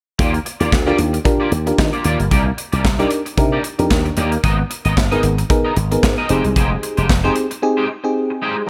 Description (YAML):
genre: early-eighties boogie funk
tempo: 113 BPM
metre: 4/4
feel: swing 56% on 16ths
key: Eb major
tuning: A4 = 440 Hz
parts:
  - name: electric guitar at the edge of break-up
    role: riff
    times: 0.2-8.6 s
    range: Ab3 to Eb5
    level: -25 LUFS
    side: equal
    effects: ensemble chorus
  - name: slap bass with an envelope filter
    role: bass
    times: 0.2-7.3 s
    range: F1 to Eb3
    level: -21 LUFS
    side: equal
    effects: none
  - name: modern studio drum kit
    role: drums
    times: 0.2-7.6 s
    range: handclaps, hi-hat, kick drum, snare drum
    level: -21 LUFS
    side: equal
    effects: none
  - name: FM electric piano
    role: accompaniment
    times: 0.9-8.6 s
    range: Cb4 to Bb4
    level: -22 LUFS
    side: equal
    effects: chorus
room: little or no reverb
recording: none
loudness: -17 LUFS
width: mono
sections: 0.2-8.7 A section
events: none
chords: 0.2 Ebmaj9; 2.3 Cm9; 4.4 Abmadd9; 6.3 Fm9